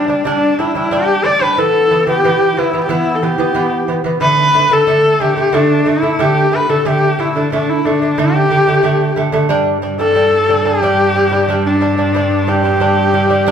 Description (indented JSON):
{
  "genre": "mongolian traditional, Mongolian folk",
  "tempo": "91 BPM",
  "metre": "4/4",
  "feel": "straight",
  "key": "G gong mode",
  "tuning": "A4 = 440 Hz",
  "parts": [
    { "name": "clear horsehead fiddle", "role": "melody", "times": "0.0-13.5 s", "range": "D4 to D5", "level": "-13 LUFS", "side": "left 1 dB", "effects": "none" },
    { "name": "lute", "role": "arpeggios", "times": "0.0-13.5 s", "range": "D3 to D4", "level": "-16 LUFS", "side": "right 2 dB", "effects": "none" },
    { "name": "bright cello", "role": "drone", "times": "9.5-13.5 s", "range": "G2", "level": "-19 LUFS", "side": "right 2 dB", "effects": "none" }
  ],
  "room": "wet large studio reverb, RT60 0.9 s",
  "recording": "band playing live in one room",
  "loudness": "-11 LUFS",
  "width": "side -8 dB against mid",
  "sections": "0.0-9.5 A section; 9.5-13.5 B section",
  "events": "none",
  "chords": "0.0 G5; 1.6 E5; 4.2 D5; 9.5 G5"
}